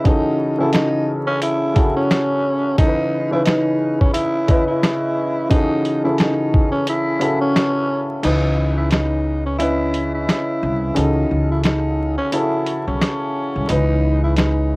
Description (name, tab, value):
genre	hip hop, boom-bap hip-hop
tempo	88 BPM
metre	4/4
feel	swing 59% on 16ths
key	C# minor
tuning	A4 = 444 Hz
part	dark upright piano	accompaniment	0.0-14.8 s	C#3 to D#5	-21 LUFS	left 1 dB	high-pass filter, low-pass filter, cassette tape, plate reverb
part	growling tenor saxophone	melody	0.1-14.8 s	C#4 to E4	-20 LUFS	equal	high-pass filter, low-pass filter, cassette tape, plate reverb
part	boom bap sampler-style drum kit	drums	0.1-14.6 s	crash cymbal, hi-hat, kick drum, snare drum	-18 LUFS	equal	cassette tape
part	upright bass	bass	8.2-14.8 s	B1 to C#2	-20 LUFS	equal	none
room	moderate booth ambience, RT60 0.2 s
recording	home recording on cassette, vinyl crackle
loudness	-16 LUFS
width	side -26 dB against mid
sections	0.0-8.2 A section; 8.2-14.8 B section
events	kick muted 6.9-8.2, 8.2-14.8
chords	0.1 F#m9/C#; 2.8 C#m9; 5.5 F#m9/C#; 8.2 C#m9; 11.0 F#m9/C#; 13.7 C#m9